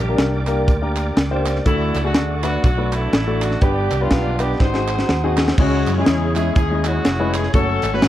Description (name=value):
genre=uptempo gospel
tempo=122 BPM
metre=4/4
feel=swing 59% on 8ths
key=unclear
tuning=A4 = 439 Hz
part: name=warm horn section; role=melody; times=0.0-8.1 s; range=A3 to C5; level=-24 LUFS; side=equal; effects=none
part: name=warm upright piano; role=accompaniment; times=0.0-8.1 s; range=G2 to E5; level=-22 LUFS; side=left 2 dB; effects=none
part: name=bright tonewheel organ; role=sustained chords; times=0.0-8.1 s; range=E4 to Eb6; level=-30 LUFS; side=right 1 dB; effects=fast rotary speaker, chorus vibrato
part: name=fingered electric bass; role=bass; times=0.0-8.1 s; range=E#1 to F#2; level=-22 LUFS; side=equal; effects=none
part: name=tight funk drum kit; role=drums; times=0.2-8.1 s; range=crash cymbal, hi-hat, kick drum, snare drum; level=-18 LUFS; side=equal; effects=none
part: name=group handclap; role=percussion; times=0.5-7.9 s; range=none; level=-32 LUFS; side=right 5 dB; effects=none
room=light reverb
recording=worn, warbling old tape, cassette tape, warbly pitch drift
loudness=-16 LUFS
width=side -13 dB against mid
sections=0.0-5.6 A section; 5.6-8.1 A section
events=drum fill 4.6-5.6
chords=0.0 Gm; 1.7 D; 3.6 G; 4.6 Ab7; 5.6 C#m; 7.5 F#m